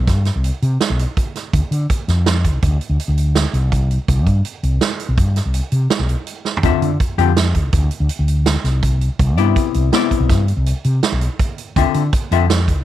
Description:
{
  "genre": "progressive instrumental, band music in an uneven meter",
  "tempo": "164 BPM",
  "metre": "7/4",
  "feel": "straight",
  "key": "D dorian",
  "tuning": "A4 = 440 Hz",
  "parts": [
    { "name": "fretless electric bass", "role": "bass", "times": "0.0-12.8 s", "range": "B1 to D3", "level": "-16 LUFS", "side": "equal", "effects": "none" },
    { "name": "swinging big-band drum kit", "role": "drums", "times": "0.1-12.8 s", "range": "hi-hat, kick drum, snare drum, toms", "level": "-20 LUFS", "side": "right 2 dB", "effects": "none" },
    { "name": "archtop guitar, miked and amplified", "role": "accompaniment", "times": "6.6-12.4 s", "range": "C3 to E5", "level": "-18 LUFS", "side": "left 16 dB", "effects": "none" }
  ],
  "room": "small room ambience",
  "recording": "1960s-style stereo",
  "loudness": "-15 LUFS",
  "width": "side -13 dB against mid",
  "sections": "0.0-12.8 A section",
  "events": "drum fill 6.5",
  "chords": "0.0 C5; 1.5 Dm7; 4.1 C5; 6.6 Dm7; 9.2 Cmaj9; 11.8 Dm9"
}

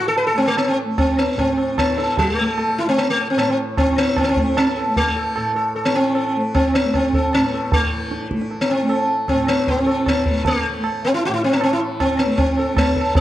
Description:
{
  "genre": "indian classical, Hindustani",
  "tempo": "153 BPM",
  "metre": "7/4",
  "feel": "straight",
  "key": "unclear",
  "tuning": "A4 = 440 Hz",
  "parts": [
    { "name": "sitar", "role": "melody", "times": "0.0-13.2 s", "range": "A3 to B4", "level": "-18 LUFS", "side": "equal", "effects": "none" },
    { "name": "tanpura", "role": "drone", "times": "0.0-13.2 s", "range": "A2 to A3", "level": "-28 LUFS", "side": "equal", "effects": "none" },
    { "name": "tabla", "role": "percussion", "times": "0.2-13.2 s", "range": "none", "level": "-24 LUFS", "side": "right 2 dB", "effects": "none" }
  ],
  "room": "moderate recital hall reverb, RT60 1.6 s",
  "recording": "dark, warm production",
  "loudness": "-16 LUFS",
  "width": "side -13 dB against mid",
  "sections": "0.0-13.2 A section",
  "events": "speeding up 0.0-13.2",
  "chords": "none"
}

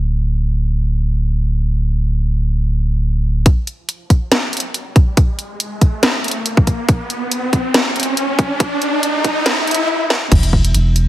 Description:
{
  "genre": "deep dubstep",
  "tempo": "140 BPM",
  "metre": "4/4",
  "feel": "swing 54% on 16ths, half-time",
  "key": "unclear",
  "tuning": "A4 = 440 Hz",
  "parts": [
    { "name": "soft dub sub bass", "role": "bass", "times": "0.0-3.4, 10.3-11.1 s", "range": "D1 to E1", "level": "-15 LUFS", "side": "equal", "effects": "tube saturation" },
    { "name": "electronic kick drum", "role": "drums", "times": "3.5-10.6 s", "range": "none", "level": "-12 LUFS", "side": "equal", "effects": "none" },
    { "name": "garage drum kit", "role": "drums", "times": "3.5-11.1 s", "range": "crash cymbal, hi-hat, snare drum", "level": "-17 LUFS", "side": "equal", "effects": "low-pass filter on hats, low-pass filter on snare, low-pass filter on cymbals" },
    { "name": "riser", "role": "sound effects", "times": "5.5-9.9 s", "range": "none", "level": "-20 LUFS", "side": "equal", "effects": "none" }
  ],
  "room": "light reverb, digital ambience",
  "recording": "heavily compressed radio sound, high-pass filter",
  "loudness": "-14 LUFS",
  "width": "side -14 dB against mid",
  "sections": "0.0-3.5 A section; 3.5-10.3 B section",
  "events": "build-up 3.5-10.3; filter sweep 3.5-10.3; riser 5.5-9.9; drum fill 10.1",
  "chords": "none"
}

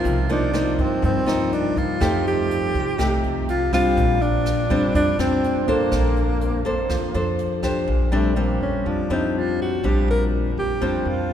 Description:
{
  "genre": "bossa nova",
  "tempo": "123 BPM",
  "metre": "4/4",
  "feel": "straight",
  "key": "Bb major",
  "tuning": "A4 = 443 Hz",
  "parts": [
    { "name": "breathy alto saxophone", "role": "melody", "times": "0.0-11.3 s", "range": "A3 to Bb4", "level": "-24 LUFS", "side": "right 1 dB", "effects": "none" },
    { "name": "nylon-string guitar", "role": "accompaniment", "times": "0.0-11.3 s", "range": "G2 to C5", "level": "-22 LUFS", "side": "left 2 dB", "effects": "none" },
    { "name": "jazz brush drum kit", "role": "drums", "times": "0.0-7.7 s", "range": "hi-hat, kick drum, rim click", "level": "-30 LUFS", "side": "right 2 dB", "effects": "none" },
    { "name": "upright bass", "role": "bass", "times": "0.1-11.3 s", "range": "Bb1 to G2", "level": "-25 LUFS", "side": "right 1 dB", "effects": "none" }
  ],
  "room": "wet cathedral reverb, RT60 5.5 s",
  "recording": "recorded in a church or concert hall",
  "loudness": "-19 LUFS",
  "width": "side -9 dB against mid",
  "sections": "0.0-7.9 A section; 7.9-11.3 B section",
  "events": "alto saxophone solo 7.9-11.3",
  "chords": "0.1 Cm11; 2.0 F9; 4.0 Bb69"
}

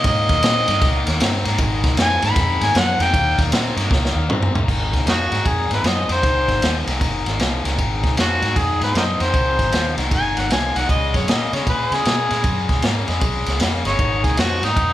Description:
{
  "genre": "electric blues shuffle",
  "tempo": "155 BPM",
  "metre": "4/4",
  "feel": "swing 65% on 8ths",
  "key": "Ab mixolydian",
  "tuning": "A4 = 439 Hz",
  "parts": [
    { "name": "mellow harmonica", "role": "melody", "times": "0.0-14.9 s", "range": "Db4 to Cb6", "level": "-20 LUFS", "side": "equal", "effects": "overdrive" },
    { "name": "biting overdriven guitar", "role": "riff", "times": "0.0-14.9 s", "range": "Ab2 to C4", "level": "-24 LUFS", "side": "left 4 dB", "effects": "none" },
    { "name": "vintage muted fingered electric bass", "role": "bass", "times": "0.0-14.9 s", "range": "Gb1 to Db3", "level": "-23 LUFS", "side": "right 1 dB", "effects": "none" },
    { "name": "crunchy breakbeat drum kit", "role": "drums", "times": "0.0-14.9 s", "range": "crash cymbal, kick drum, ride cymbal, snare drum, toms", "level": "-20 LUFS", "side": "equal", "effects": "none" }
  ],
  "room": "moderate large studio reverb, RT60 0.8 s",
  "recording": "band playing live in one room",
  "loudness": "-16 LUFS",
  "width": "side -13 dB against mid",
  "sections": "0.0-4.7 A section; 4.7-14.9 B section",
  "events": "harmonica solo 0.0-4.7; drum fill 3.9-4.7",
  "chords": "0.0 Eb7; 1.6 Ab5; 3.1 Eb7; 4.7 Ab7; 10.9 Db7(no3); 14.0 Ab7(no3)"
}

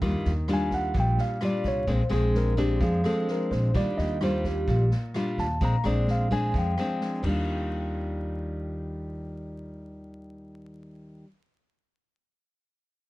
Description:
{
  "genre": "bossa nova",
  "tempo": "129 BPM",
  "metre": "4/4",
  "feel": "straight",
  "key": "Eb major",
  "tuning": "A4 = 441 Hz",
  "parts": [
    { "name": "nylon-string guitar", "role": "accompaniment", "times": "0.0-11.3 s", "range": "Bb2 to F4", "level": "-30 LUFS", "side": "left 1 dB", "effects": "none" },
    { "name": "upright bass", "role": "bass", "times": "0.0-11.2 s", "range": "Bb1 to F2", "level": "-28 LUFS", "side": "equal", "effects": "none" },
    { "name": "swinging big-band drum kit", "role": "drums", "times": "0.0-7.3 s", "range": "crash cymbal, kick drum, rim click, snare drum", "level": "-34 LUFS", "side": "equal", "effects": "vintage 12-bit sampler grit" },
    { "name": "mellow tine electric piano", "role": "melody", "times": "0.5-7.2 s", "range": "G4 to Bb5", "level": "-30 LUFS", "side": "equal", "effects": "wide subtle chorus" }
  ],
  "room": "little or no reverb",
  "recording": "dark, warm production, vinyl crackle",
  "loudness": "-24 LUFS",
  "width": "side -18 dB against mid",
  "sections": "0.0-7.5 A section; 7.5-11.2 B section",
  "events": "tine electric piano solo 0.0-7.5",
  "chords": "0.0 Ebmaj9; 1.9 Bb9; 3.7 Ebmaj9; 5.6 Bb9; 7.2 Ebmaj9"
}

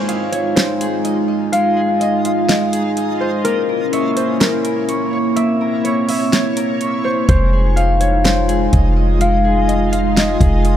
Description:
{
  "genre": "hip hop, atmospheric cloud-rap",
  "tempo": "125 BPM",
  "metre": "4/4",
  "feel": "half-time",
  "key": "F minor",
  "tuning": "A4 = 440 Hz",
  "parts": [
    { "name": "concert harp", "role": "melody", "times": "0.0-10.8 s", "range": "Bb4 to F5", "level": "-20 LUFS", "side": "left 3 dB", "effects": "tape echo" },
    { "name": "dark analog pad", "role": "sustained chords", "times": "0.0-10.8 s", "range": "Ab3 to F4", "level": "-19 LUFS", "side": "right 2 dB", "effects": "chorus, sidechain pumping" },
    { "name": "Celtic harp", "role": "arpeggios", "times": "0.0-10.8 s", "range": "Ab3 to Eb5", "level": "-24 LUFS", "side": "left 1 dB", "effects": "tape echo" },
    { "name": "backwards swelling texture", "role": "texture", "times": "0.0-10.8 s", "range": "Ab3 to Eb5", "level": "-28 LUFS", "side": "right 3 dB", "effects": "built-in reverb" },
    { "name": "smooth R&B drum kit", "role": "drums", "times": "0.1-10.8 s", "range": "hi-hat, kick drum, snare drum", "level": "-18 LUFS", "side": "equal", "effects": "none" },
    { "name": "warm 808-style bass", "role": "bass", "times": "7.3-10.8 s", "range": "F1", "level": "-16 LUFS", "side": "equal", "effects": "none" }
  ],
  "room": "light reverb",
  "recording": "none",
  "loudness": "-14 LUFS",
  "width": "side -10 dB against mid",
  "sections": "0.0-10.8 A section",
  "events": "break 0.0-7.3; kick muted 5.4-7.3",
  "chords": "0.0 Fm7; 3.4 C7b9; 7.3 Fm7"
}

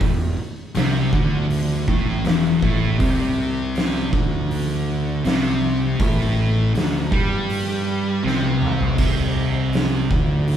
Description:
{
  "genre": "stoner and doom metal",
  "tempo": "80 BPM",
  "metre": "4/4",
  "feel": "straight",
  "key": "unclear",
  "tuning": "A4 = 440 Hz",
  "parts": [
    { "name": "thick fuzz guitar", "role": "riff", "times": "0.0-10.6 s", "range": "E2 to G3", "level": "-22 LUFS", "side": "left 3 dB", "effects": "distortion" },
    { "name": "thick fuzz guitar", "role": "riff", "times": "0.0-10.6 s", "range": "E2 to G3", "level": "-25 LUFS", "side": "right 4 dB", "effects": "distortion" },
    { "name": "fuzz fingered electric bass", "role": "bass", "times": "0.0-10.6 s", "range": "E1 to G2", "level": "-27 LUFS", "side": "right 1 dB", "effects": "overdrive" },
    { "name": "oversized low-tuned drum kit", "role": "drums", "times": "0.0-10.6 s", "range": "crash cymbal, hi-hat, kick drum, snare drum, toms", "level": "-23 LUFS", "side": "right 1 dB", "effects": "none" }
  ],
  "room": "light reverb",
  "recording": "band playing live in one room",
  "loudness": "-18 LUFS",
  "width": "side -9 dB against mid",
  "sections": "0.0-10.6 A section",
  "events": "drum fill 8.2-9.0",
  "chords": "0.0 E7sus4; 3.0 C5"
}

